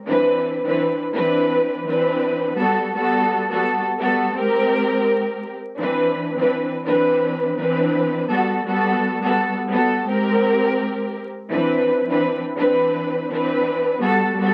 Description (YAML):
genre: hip hop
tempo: 84 BPM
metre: 4/4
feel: swing 58% on 16ths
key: C lydian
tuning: A4 = 441 Hz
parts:
  - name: dark studio string section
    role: solo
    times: 0.1-14.5 s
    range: E3 to B4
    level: -20 LUFS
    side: equal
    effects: high-pass filter, low-pass filter
room: moderate studio reverb, RT60 0.5 s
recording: dark, warm production, vinyl crackle, nothing above 10.6 kHz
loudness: -20 LUFS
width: mono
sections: 0.0-14.5 A section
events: none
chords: 0.1 Cmaj9; 2.6 Gmaj9; 4.4 Abmaj9; 5.8 Cmaj9; 8.3 Gmaj9; 10.1 Abmaj9; 11.5 Cmaj9; 14.0 Gmaj9